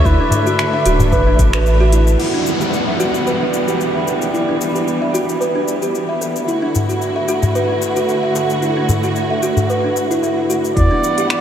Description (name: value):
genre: organic downtempo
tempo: 112 BPM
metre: 4/4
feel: swing 54% on 16ths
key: E minor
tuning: A4 = 441 Hz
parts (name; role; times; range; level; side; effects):
- trumpet with cup mute; melody; 0.0-1.9, 10.8-11.4 s; B4 to D5; -23 LUFS; equal; diffuse ambient delay
- warm studio string section; sustained chords; 0.0-11.4 s; D3 to F#5; -20 LUFS; right 1 dB; sidechain pumping
- kalimba; arpeggios; 0.0-11.4 s; D4 to E5; -19 LUFS; equal; low-pass filter, diffuse ambient delay
- warm sub bass; bass; 0.1-2.2, 10.8-10.9 s; D1 to E2; -13 LUFS; equal; sidechain pumping
- electronic kick drum; drums; 0.1-1.5, 10.8-10.9 s; none; -18 LUFS; equal; none
- organic electronic drum kit; drums; 0.1-11.4 s; crash cymbal, finger snaps, hi-hat, shaker; -26 LUFS; left 2 dB; overdrive
- darbuka; percussion; 0.3-2.2, 6.8-10.7 s; none; -21 LUFS; left 2 dB; none
- downlifter; sound effects; 2.2-6.5 s; none; -24 LUFS; equal; none
room: wet huge ambient reverb, RT60 8.5 s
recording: dreamy mix soaked in reverb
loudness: -14 LUFS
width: side -9 dB against mid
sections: 0.0-2.2 A section; 2.2-10.8 B section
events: none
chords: 0.0 D69; 2.2 Em; 6.5 Dadd9; 10.8 Em7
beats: | 0.05 0.59 1.12 1.66 | 2.20 2.73 3.27 3.80 | 4.34 4.87 5.41 5.95 | 6.48 7.02 7.55 8.09 | 8.62 9.16 9.70 10.23 | 10.77 11.30